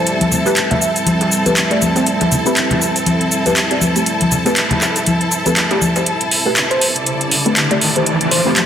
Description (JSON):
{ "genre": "deep house", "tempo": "120 BPM", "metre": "4/4", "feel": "swing 58% on 16ths", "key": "A minor", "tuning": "A4 = 440 Hz", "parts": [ { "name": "dark analog pad", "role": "sustained chords", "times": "0.0-8.7 s", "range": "G3 to B5", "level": "-24 LUFS", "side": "right 1 dB", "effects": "wide subtle chorus" }, { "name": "filtered dub chord stab", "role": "stabs", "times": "0.0-8.7 s", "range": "A3 to D5", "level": "-20 LUFS", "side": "equal", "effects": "phaser, wide subtle chorus, tape echo" }, { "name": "clear studio string section", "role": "texture", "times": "0.0-8.7 s", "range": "C4 to A5", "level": "-20 LUFS", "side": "equal", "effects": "none" }, { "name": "breakbeat sampler-style drum kit", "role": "drums", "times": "0.1-6.1 s", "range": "hi-hat, snare drum", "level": "-29 LUFS", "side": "equal", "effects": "high-pass filter on hats, low-pass filter on hats, high-pass filter on snare, low-pass filter on snare" }, { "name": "house drum kit", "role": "drums", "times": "0.1-8.7 s", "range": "handclaps, hi-hat, shaker", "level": "-17 LUFS", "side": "equal", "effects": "overdrive" }, { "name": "congas", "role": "percussion", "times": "0.2-5.9 s", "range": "none", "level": "-19 LUFS", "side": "left 2 dB", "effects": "none" }, { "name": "bell-like FM electric piano", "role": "melody", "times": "0.7-0.9, 6.7-8.7 s", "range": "C5 to E5", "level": "-22 LUFS", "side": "right 1 dB", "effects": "chorus, tremolo, tape echo" }, { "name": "riser", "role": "sound effects", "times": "6.5-8.7 s", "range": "none", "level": "-21 LUFS", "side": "equal", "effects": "none" } ], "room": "wet lush hall reverb, RT60 1.6 s, digital ambience", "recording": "dense, heavily limited modern master", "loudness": "-13 LUFS", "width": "side -9 dB against mid", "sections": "0.0-6.1 A section; 6.1-8.7 B section", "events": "build-up 6.1-8.7; riser 6.5-8.7", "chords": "0.0 Am9" }